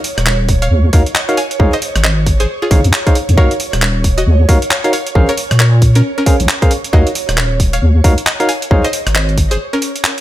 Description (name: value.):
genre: UK garage, two-step garage.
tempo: 135 BPM.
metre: 4/4.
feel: swing 61% on 16ths.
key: Eb dorian.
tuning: A4 = 442 Hz.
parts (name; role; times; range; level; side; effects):
string-like resonator pluck; melody; 0.0-10.0 s; Db4 to Ab5; -21 LUFS; equal; chorus, digital delay.
ethereal airy pad; sustained chords; 0.0-10.2 s; Db5; -24 LUFS; right 4 dB; ensemble chorus, built-in reverb, phaser, sidechain pumping.
breakbeat sampler-style drum kit; drums; 0.0-10.2 s; handclaps, hi-hat, rim click; -18 LUFS; right 1 dB; studio reverb.
deep soft wobble bass; bass; 0.2-9.6 s; Eb1 to Bb2; -12 LUFS; equal; chorus, tube saturation.
electronic kick drum; drums; 0.5-9.5 s; none; -11 LUFS; equal; studio reverb.
barky tine electric piano; stabs; 0.9-8.8 s; Db4 to F5; -18 LUFS; equal; digital delay.
room: little or no reverb.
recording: none.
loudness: -10 LUFS.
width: side -14 dB against mid.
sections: 0.0-10.2 A section.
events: break 9.6-10.2.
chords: 0.0 Ebm7; 1.4 Dbmaj7; 3.4 Ebm7; 4.9 Bbm7; 6.9 Ebm7; 8.5 Dbmaj7(no3).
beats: 0.26 0.71 1.15 | 1.60 2.04 2.49 2.93 | 3.38 3.82 4.26 4.71 | 5.15 5.60 6.04 6.49 | 6.93 7.38 7.82 8.26 | 8.71 9.15 9.60 10.04.